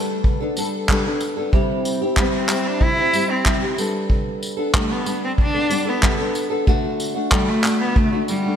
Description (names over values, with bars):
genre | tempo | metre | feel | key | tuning
acoustic pop | 93 BPM | 4/4 | straight | G major | A4 = 440 Hz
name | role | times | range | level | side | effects
rich cello | melody | 0.0-8.6 s | G3 to E4 | -22 LUFS | equal | none
nylon-string guitar | accompaniment | 0.0-8.6 s | C3 to A4 | -22 LUFS | left 1 dB | double-tracked left and right
vintage brush drum kit | drums | 0.2-8.4 s | handclaps, kick drum, tambourine | -20 LUFS | equal | gated reverb
room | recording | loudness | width
moderate lush hall reverb, RT60 1.8 s, small room ambience | bright 1980s-style digital production | -17 LUFS | side -8 dB against mid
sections
0.0-8.6 A section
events
none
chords
0.0 Gadd9; 1.5 C; 3.8 Gadd9; 6.7 D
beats
0.24 0.88 | 1.52 2.17 2.81 3.45 | 4.10 4.74 5.39 6.03 | 6.67 7.32 7.96